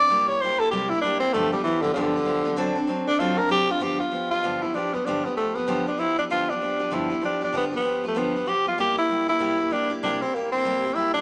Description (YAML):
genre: rock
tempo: 193 BPM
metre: 4/4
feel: swing 62% on 8ths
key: G mixolydian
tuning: A4 = 442 Hz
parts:
  - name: raspy tenor saxophone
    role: melody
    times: 0.0-11.2 s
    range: D3 to D5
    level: -25 LUFS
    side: equal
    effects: none
  - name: picked steel-string acoustic guitar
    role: accompaniment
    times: 0.0-11.2 s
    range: G2 to A4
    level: -30 LUFS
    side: equal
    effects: none
room: wet club reverb, RT60 0.9 s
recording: none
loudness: -24 LUFS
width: mono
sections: 0.0-3.8 A section; 3.8-11.2 B section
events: tenor saxophone solo 0.0-3.8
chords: 0.1 C7; 1.3 G7; 2.6 D7; 3.8 G7; 8.8 C7